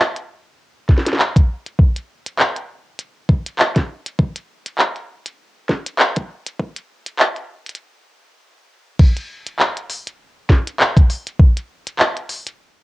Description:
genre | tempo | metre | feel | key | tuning
glitch hop | 100 BPM | 4/4 | swing 57% on 16ths | none | none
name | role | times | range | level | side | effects
glitchy drum kit | drums | 0.2-12.6 s | crash cymbal, handclaps, hi-hat, snare drum | -18 LUFS | equal | none
electronic kick drum | drums | 0.9-11.5 s | none | -12 LUFS | equal | overdrive
room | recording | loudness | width
light reverb | home recording on cassette, high-pass filter | -16 LUFS | side -19 dB against mid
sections
0.0-9.0 A section; 9.0-12.8 B section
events
build-up 0.0-9.0; filter sweep 0.0-9.0; stop 7.8-9.0; drop 9.0-12.8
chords
none

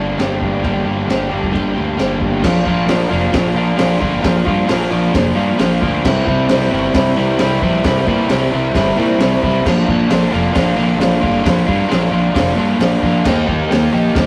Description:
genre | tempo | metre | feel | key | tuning
garage rock duo or trio | 133 BPM | 4/4 | straight | unclear | A4 = 439 Hz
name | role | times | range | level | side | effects
overdriven electric guitar | riff | 0.0-14.3 s | G2 to G4 | -18 LUFS | equal | none
fuzz picked electric bass | bass | 0.0-14.3 s | F1 to Bb2 | -21 LUFS | equal | overdrive
crunchy breakbeat drum kit | drums | 0.2-14.3 s | crash cymbal, hi-hat, kick drum, snare drum | -21 LUFS | equal | none
room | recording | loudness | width
wet booth ambience, RT60 0.2 s | rough rehearsal-room recording, warm saturation | -15 LUFS | mono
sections
0.0-2.4 A section; 2.4-14.3 B section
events
none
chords
0.0 Gm; 2.4 Bb; 6.0 C; 9.6 Bb; 13.2 Eb

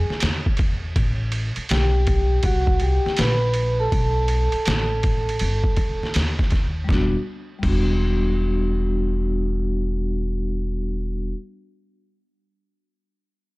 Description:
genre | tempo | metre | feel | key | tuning
hip hop, jazz-hop | 81 BPM | 4/4 | swing 63% on 16ths | E minor | A4 = 440 Hz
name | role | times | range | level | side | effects
vibraphone with soft mallets | accompaniment | 0.0-11.3 s | G3 to B5 | -25 LUFS | equal | none
upright bass | bass | 0.0-11.3 s | E1 to E2 | -23 LUFS | equal | none
trip hop sampler-style drum kit | drums | 0.1-7.9 s | crash cymbal, hi-hat, kick drum, ride cymbal, snare drum | -23 LUFS | equal | overdrive
room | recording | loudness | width
little or no reverb | none | -19 LUFS | side -22 dB against mid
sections
0.0-6.9 A section; 6.9-9.8 B section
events
vibraphone solo 0.0-6.9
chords
0.0 A#7(b5, no3) (rootless); 1.0 Am7; 3.9 B7; 6.9 Em7

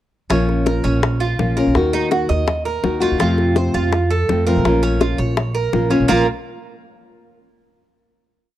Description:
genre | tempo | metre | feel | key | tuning
latin, Cuban son and guajira | 166 BPM | 4/4 | straight | Bb harmonic minor | A4 = 440 Hz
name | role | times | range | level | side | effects
nylon-string guitar | accompaniment | 0.3-6.2 s | Bb2 to Gb4 | -19 LUFS | left 2 dB | none
Cuban tres | arpeggios | 0.3-6.3 s | Bb3 to Eb5 | -21 LUFS | right 5 dB | none
upright bass | bass | 0.3-6.3 s | Bb1 to F2 | -20 LUFS | right 1 dB | none
bongos | percussion | 0.3-6.2 s | none | -22 LUFS | left 5 dB | none
room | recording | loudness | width
studio ambience | dry, close 1970s-style studio recording | -15 LUFS | side -13 dB against mid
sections
0.3-6.1 A section; 6.1-7.5 final chord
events
none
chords
0.3 Bbm; 1.8 Ebm; 3.2 F; 4.6 Bbm; 6.1 Bb5

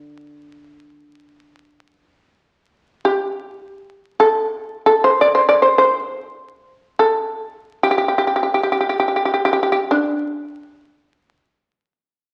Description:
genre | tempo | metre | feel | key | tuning
japanese traditional, Japanese chamber music | free time | none | none | unclear | A4 = 440 Hz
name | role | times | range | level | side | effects
shamisen | melody | 0.0-12.3 s | D4 to D5 | -17 LUFS | equal | none
koto | accompaniment | 0.0-1.7 s | D3 | -49 LUFS | equal | none
room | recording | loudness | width
wet recital hall reverb, RT60 1.3 s | very old 78 rpm record, vinyl crackle | -18 LUFS | mono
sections
0.0-12.3 A section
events
slowing down 9.0-12.3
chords
none

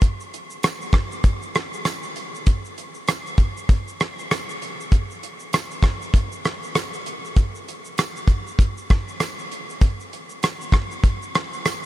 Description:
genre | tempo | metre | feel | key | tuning
indie pop | 98 BPM | 4/4 | swing 60% on 16ths | none | none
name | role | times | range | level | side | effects
damped 70s drum kit | drums | 0.0-11.9 s | hi-hat, kick drum, rim click, shaker | -21 LUFS | equal | vintage 12-bit sampler grit
tambourine | percussion | 0.6-11.8 s | none | -44 LUFS | right 9 dB | none
room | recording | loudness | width
light reverb, small room ambience | none | -20 LUFS | side -15 dB against mid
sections
0.0-11.9 A section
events
none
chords
none

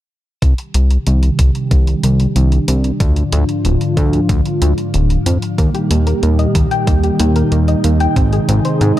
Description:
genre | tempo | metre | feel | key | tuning
synthwave | 93 BPM | 4/4 | straight | C minor | A4 = 441 Hz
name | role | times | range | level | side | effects
warm analog pad | sustained chords | 0.4-9.0 s | Ab2 to Ab4 | -18 LUFS | equal | chorus, sidechain pumping
fat analog bass | bass | 0.4-8.9 s | D1 to Ab2 | -13 LUFS | equal | none
electronic hi-hat | drums | 0.4-9.0 s | none | -26 LUFS | equal | none
electronic kick drum | drums | 0.4-8.3 s | none | -14 LUFS | equal | none
soft round pluck | arpeggios | 5.6-9.0 s | Bb3 to G5 | -20 LUFS | left 1 dB | chorus, tape echo, shimmer reverb
room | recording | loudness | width
light reverb | dark, warm production | -12 LUFS | side -14 dB against mid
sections
0.4-9.0 A section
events
filter sweep on analog synth bass 0.4-9.0; filter sweep on analog synth pad 0.4-9.0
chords
0.4 Cmadd9; 3.0 Ddim; 5.6 Eb; 8.2 Ab

